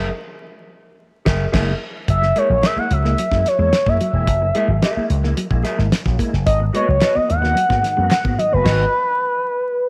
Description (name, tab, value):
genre	funk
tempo	110 BPM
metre	4/4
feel	straight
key	unclear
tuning	A4 = 438 Hz
part	mellow electric guitar	accompaniment	0.0-8.8 s	F#4 to E5	-30 LUFS	equal	none
part	slap bass with an envelope filter	bass	0.0-8.8 s	E1 to G#2	-21 LUFS	equal	none
part	damped 70s drum kit	drums	1.3-8.8 s	crash cymbal, hi-hat, kick drum, snare drum	-24 LUFS	equal	none
part	bright tonewheel organ	stabs	1.5-8.8 s	G#2 to F#4	-31 LUFS	equal	chorus vibrato, slow rotary speaker
part	expressive portamento lead	melody	2.1-9.9 s	B4 to F#5	-20 LUFS	equal	chorus
part	semi-hollow electric guitar	riff	2.2-8.5 s	F#3 to B3	-30 LUFS	equal	none
part	group handclap	percussion	7.0-8.2 s	none	-35 LUFS	equal	none
room	light reverb, small room reverb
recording	vinyl crackle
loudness	-18 LUFS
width	mono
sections	0.0-2.1 A section; 2.1-9.9 B section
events	band accent 0.0-2.1, 8.7-9.9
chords	0.0 F#9; 6.5 G#m7